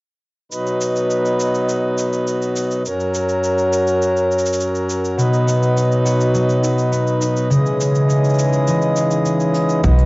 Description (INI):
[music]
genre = folktronica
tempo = 103 BPM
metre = 4/4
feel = straight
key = B major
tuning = A4 = 441 Hz
[part]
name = pedal harmonium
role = sustained chords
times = 0.5-10.1 s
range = F#2 to D#5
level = -17 LUFS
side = equal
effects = cassette tape
[part]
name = electronic shaker and hi-hat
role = drums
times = 0.5-10.1 s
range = none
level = -30 LUFS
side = right 1 dB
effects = overdrive
[part]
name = concert harp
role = arpeggios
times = 5.2-10.1 s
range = B2 to G#4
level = -16 LUFS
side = equal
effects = cassette tape
[part]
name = upright bass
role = bass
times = 9.8-10.1 s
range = B1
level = -11 LUFS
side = equal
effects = tube saturation
[part]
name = electronic kick drum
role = drums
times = 9.8-10.0 s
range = none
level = -21 LUFS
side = equal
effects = none
[sound]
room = moderate spring reverb, RT60 2.1 s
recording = home recording on cassette, nothing above 7.8 kHz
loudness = -15 LUFS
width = side -23 dB against mid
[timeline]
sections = 0.5-9.8 A section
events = none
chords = 0.5 B; 2.9 F#; 5.2 B; 7.5 C#madd9